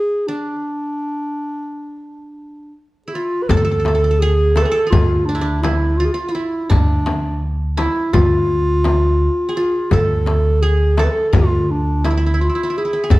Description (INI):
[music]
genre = Turkish makam ensemble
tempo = 168 BPM (eighths)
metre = 9/8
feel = straight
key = D makam nikriz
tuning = A4 = 440 Hz
[part]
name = dark clarinet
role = melody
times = 0.0-13.2 s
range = D4 to B4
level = -20 LUFS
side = equal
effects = none
[part]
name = qanun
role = second line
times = 0.0-13.2 s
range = D4 to A4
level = -25 LUFS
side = right 1 dB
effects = none
[part]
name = upright bass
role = bass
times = 3.5-13.2 s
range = D2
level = -17 LUFS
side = equal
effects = none
[part]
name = darbuka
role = percussion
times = 3.5-13.2 s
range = none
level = -19 LUFS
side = equal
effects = none
[part]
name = frame drum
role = percussion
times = 3.5-13.2 s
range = none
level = -23 LUFS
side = left 3 dB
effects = none
[sound]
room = moderate recital hall reverb, RT60 1.4 s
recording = dark, warm production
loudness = -15 LUFS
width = side -18 dB against mid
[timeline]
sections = 0.0-3.5 A section; 3.5-13.2 B section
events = break 0.3-3.5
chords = none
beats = | 0.28 0.64 0.99 1.35 1.71 2.07 2.43 2.78 3.14 | 3.50 3.85 4.21 4.57 4.93 5.28 5.64 6.00 6.35 | 6.71 7.06 7.42 7.78 8.13 8.49 8.84 9.20 9.55 | 9.91 10.27 10.62 10.98 11.33 11.69 12.05 12.40 12.76 | 13.11